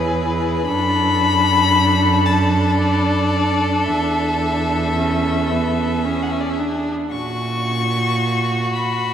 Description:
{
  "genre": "classical, slow romantic movement for string quartet",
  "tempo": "56 BPM",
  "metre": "3/4",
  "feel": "rubato",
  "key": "A major",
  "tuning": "A4 = 440 Hz",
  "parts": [
    { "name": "rich violin", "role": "melody", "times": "0.0-9.1 s", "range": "B4 to C#6", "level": "-21 LUFS", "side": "left 5 dB", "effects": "none" },
    { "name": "rich violin", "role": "second line", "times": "0.0-9.1 s", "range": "F#4 to A4", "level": "-24 LUFS", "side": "left 1 dB", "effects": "none" },
    { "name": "rich viola", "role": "accompaniment", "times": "0.0-7.1 s", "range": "B3 to E4", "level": "-22 LUFS", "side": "right 1 dB", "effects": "none" },
    { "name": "rich cello", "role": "bass", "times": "0.0-9.1 s", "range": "E2 to A#2", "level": "-21 LUFS", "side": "right 3 dB", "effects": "none" }
  ],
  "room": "wet cathedral reverb, RT60 5.2 s",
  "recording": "in a vast, echoing space",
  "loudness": "-16 LUFS",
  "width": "side -9 dB against mid",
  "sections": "0.0-9.1 A section",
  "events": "none",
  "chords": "0.0 E; 0.7 D/F#; 3.9 A/E; 6.1 E; 7.1 F#/A#",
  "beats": "| 0.68 1.75 2.80 | 3.88 4.97 6.07 | 7.14 8.20"
}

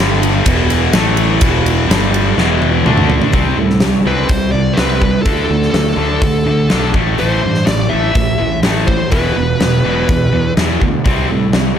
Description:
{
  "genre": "hard rock",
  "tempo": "124 BPM",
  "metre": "4/4",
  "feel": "straight",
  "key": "unclear",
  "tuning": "A4 = 440 Hz",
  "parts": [
    { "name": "distorted electric guitar", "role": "riff", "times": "0.0-11.8 s", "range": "E2 to D4", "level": "-19 LUFS", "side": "right 10 dB", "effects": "overdrive" },
    { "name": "heavy high-gain guitar", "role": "riff", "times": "0.0-11.8 s", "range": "E2 to D4", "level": "-18 LUFS", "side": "left 10 dB", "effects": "distortion" },
    { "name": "fuzz fingered electric bass", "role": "bass", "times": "0.0-11.7 s", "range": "E1 to D3", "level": "-18 LUFS", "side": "equal", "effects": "overdrive" },
    { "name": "huge arena drum kit", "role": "drums", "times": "0.2-11.6 s", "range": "hi-hat, kick drum, ride cymbal, snare drum, toms", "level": "-16 LUFS", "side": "equal", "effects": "none" },
    { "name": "bluesy overdriven lead guitar", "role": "melody", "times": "4.1-10.5 s", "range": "A4 to E5", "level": "-19 LUFS", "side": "equal", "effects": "distortion, slapback echo" }
  ],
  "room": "light reverb, small room ambience",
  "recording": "none",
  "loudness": "-11 LUFS",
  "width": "side -9 dB against mid",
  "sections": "0.0-3.3 A section; 3.3-11.8 B section",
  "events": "drum fill 2.4-3.3",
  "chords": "0.5 E5; 0.9 A5; 1.4 E5; 1.9 G5; 2.4 E5; 2.9 D5; 3.3 C5; 5.3 D5; 7.0 Am; 9.1 E5; 11.1 C5",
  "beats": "0.45 0.93 | 1.41 1.89 2.37 2.85 | 3.34 3.82 4.30 4.78 | 5.27 5.75 6.23 6.71 | 7.20 7.68 8.16 8.64 | 9.12 9.61 10.09 10.57 | 11.05 11.53"
}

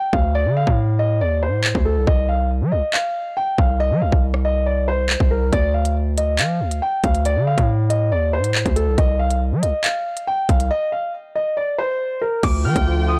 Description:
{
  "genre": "hip hop, drill",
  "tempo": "139 BPM",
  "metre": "4/4",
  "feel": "half-time",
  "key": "D phrygian",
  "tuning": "A4 = 435 Hz",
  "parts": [
    { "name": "warm concert grand piano", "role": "melody", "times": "0.0-13.2 s", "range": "A4 to F6", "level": "-24 LUFS", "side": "equal", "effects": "none" },
    { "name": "distorted 808-style bass", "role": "bass", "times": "0.1-13.2 s", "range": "C2 to G3", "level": "-22 LUFS", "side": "equal", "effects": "distortion" },
    { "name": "drill drum kit", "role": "drums", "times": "0.1-12.9 s", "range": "crash cymbal, handclaps, hi-hat, kick drum, rim click", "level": "-22 LUFS", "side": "equal", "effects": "none" },
    { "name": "warm analog pad", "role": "sustained chords", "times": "12.4-13.2 s", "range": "D3 to F4", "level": "-27 LUFS", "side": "equal", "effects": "chorus" },
    { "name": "warm studio violin section", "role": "second line", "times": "12.6-13.2 s", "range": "G5", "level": "-29 LUFS", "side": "equal", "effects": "none" }
  ],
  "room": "little or no reverb",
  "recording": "blown-out, overdriven recording, overdrive",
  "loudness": "-19 LUFS",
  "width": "mono",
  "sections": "0.0-12.4 A section",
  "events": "break 0.0-5.5, 10.7-12.4",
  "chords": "0.0 D5; 2.1 C5; 5.5 Dm; 9.0 C5; 12.4 Dm",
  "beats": "| 0.35 0.78 1.21 1.64 | 2.07 2.50 2.94 3.37 | 3.80 4.23 4.66 5.09 | 5.53 5.96 6.39 6.82 | 7.25 7.68 8.12 8.55 | 8.98 9.41 9.84 10.28 | 10.71 11.14 11.57 12.00 | 12.43 12.86"
}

